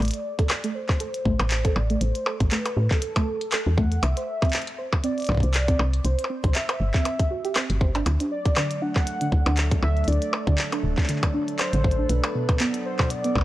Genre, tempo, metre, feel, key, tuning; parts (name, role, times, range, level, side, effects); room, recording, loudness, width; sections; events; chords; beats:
IDM; 119 BPM; 4/4; swing 56% on 16ths; A dorian; A4 = 440 Hz
warm velvety synth lead; melody; 0.0-13.4 s; A4 to F#5; -31 LUFS; equal; chorus, tape echo
soft round pluck; arpeggios; 0.0-13.3 s; B2 to C5; -30 LUFS; right 2 dB; analog chorus, tape echo
woody FM bass; bass; 0.0-13.4 s; D1 to A2; -23 LUFS; equal
glitchy drum kit; drums; 0.0-13.4 s; handclaps, hi-hat, percussion blips; -28 LUFS; equal
electronic kick drum; drums; 0.4-13.4 s; -23 LUFS; equal
warbly tape-like pad; sustained chords; 8.3-13.4 s; F#3 to D5; -33 LUFS; equal; chorus, built-in reverb
digital ambience; dry, gritty hardware recording, cassette tape; -21 LUFS; side -15 dB against mid
0.0-13.4 A section
0.0 A5; 4.0 C; 8.1 D; 12.1 Bm7
0.50 1.00 1.51 | 2.01 2.52 3.02 3.52 | 4.03 4.53 5.04 5.54 | 6.04 6.55 7.05 7.56 | 8.06 8.57 9.07 9.57 | 10.08 10.58 11.09 11.59 | 12.10 12.60 13.10